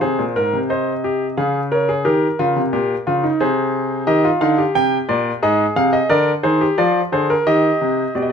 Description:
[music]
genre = classical, baroque-style 3-part fugue for grand piano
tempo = 88 BPM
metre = 3/4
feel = straight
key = Ab major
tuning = A4 = 445 Hz
[part]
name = bright grand piano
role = solo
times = 0.0-8.3 s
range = Ab2 to G5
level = -15 LUFS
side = equal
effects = none
[sound]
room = light reverb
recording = minimal, uncompressed stereo recording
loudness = -15 LUFS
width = side -7 dB against mid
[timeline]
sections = 0.0-8.2 A section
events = none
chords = 0.0 Ab; 1.4 Db; 2.1 Eb7; 3.4 Ab/C; 4.1 Eb; 5.4 Ab; 6.1 Bb7/D; 7.5 Eb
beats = | 0.02 0.70 1.38 | 2.06 2.73 3.40 | 4.08 4.75 5.43 | 6.11 6.79 7.47 | 8.15

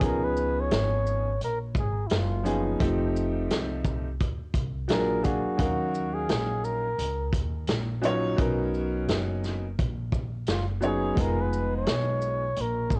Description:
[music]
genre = hip hop, jazz-hop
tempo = 86 BPM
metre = 4/4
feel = swing 58% on 16ths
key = unclear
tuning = A4 = 440 Hz
[part]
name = breathy flugelhorn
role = melody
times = 0.0-13.0 s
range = Fb4 to Db5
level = -33 LUFS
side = equal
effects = none
[part]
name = warm upright piano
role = accompaniment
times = 0.0-12.4 s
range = F3 to F5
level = -31 LUFS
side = equal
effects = none
[part]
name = upright bass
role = bass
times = 0.0-13.0 s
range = F1 to Eb2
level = -33 LUFS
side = equal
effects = transformer saturation
[part]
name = vintage drum kit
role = drums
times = 0.0-13.0 s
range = hi-hat, kick drum, shaker, snare drum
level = -31 LUFS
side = equal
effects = vintage 12-bit sampler grit, cassette tape
[sound]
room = light reverb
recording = home recording on cassette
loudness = -27 LUFS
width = mono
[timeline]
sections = 0.0-13.0 A section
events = none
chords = 0.0 Db7; 2.8 F7; 4.9 Bb7b13; 5.6 Ebm9; 8.4 Bmaj9; 11.2 Fm7b5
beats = | 0.01 0.71 1.41 2.10 | 2.80 3.50 4.20 4.89 | 5.59 6.29 6.99 7.69 | 8.38 9.08 9.78 10.48 | 11.17 11.87 12.57

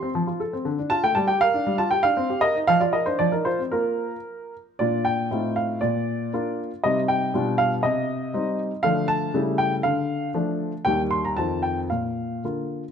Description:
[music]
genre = classical-period piano sonatina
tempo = 118 BPM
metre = 2/4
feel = rubato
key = Bb major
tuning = A4 = 438 Hz
[part]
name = warm baby grand piano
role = solo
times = 0.0-12.8 s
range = Eb2 to C6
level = -21 LUFS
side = equal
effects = none
[sound]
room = moderate recital hall reverb, RT60 1.6 s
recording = close, detailed microphones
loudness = -21 LUFS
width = side -7 dB against mid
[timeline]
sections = 0.0-4.8 A section; 4.8-12.9 B section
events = none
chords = 0.2 F; 0.7 Dm; 1.2 Gm; 1.7 G5; 2.2 Cm7; 2.7 Bb/F; 3.7 Bb5; 4.8 Bb; 5.3 F7/A; 5.8 Bb; 6.8 Cm; 7.3 G7/B; 7.8 Cm; 8.8 Dm; 9.3 A7/C#; 9.8 Dm; 10.9 Eb; 11.4 F7; 11.9 Bb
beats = 0.15 | 0.66 1.16 | 1.66 2.17 | 2.67 3.19 | 3.72 4.26 | 4.80 5.31 | 5.82 6.33 | 6.84 7.34 | 7.84 8.34 | 8.84 9.34 | 9.84 10.34 | 10.86 11.37 | 11.90 12.44

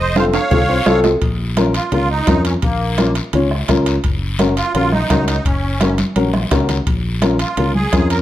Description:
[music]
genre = latin, cumbia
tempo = 170 BPM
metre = 4/4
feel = straight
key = Bb minor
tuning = A4 = 440 Hz
[part]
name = musette accordion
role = melody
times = 0.0-8.2 s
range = Bb3 to F5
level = -20 LUFS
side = right 3 dB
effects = none
[part]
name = modern bright fingered electric bass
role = bass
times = 0.0-8.2 s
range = F1 to F2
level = -20 LUFS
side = equal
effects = none
[part]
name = dark upright piano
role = accompaniment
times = 0.2-8.2 s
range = C4 to Db5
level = -18 LUFS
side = left 2 dB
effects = none
[part]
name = bombo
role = percussion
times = 0.2-8.1 s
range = none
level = -22 LUFS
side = left 1 dB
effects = none
[part]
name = congas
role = percussion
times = 0.2-8.1 s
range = none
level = -21 LUFS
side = right 1 dB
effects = none
[part]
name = guiro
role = percussion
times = 0.2-8.2 s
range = none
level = -29 LUFS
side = left 5 dB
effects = none
[part]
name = timbales and cowbell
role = percussion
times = 0.2-8.2 s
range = none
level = -25 LUFS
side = right 5 dB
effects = none
[sound]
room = moderate large studio reverb, RT60 0.8 s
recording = none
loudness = -14 LUFS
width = side -13 dB against mid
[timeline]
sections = 0.0-1.2 A section; 1.2-8.2 B section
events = drum fill 0.2-1.2, 6.2-6.9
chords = 0.0 F; 1.2 Bbm; 4.0 Gb; 6.9 Bbm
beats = 0.16 0.51 0.87 | 1.22 1.57 1.92 2.28 | 2.63 2.98 3.33 3.69 | 4.04 4.39 4.75 5.10 | 5.45 5.81 6.16 6.51 | 6.87 7.22 7.57 7.93

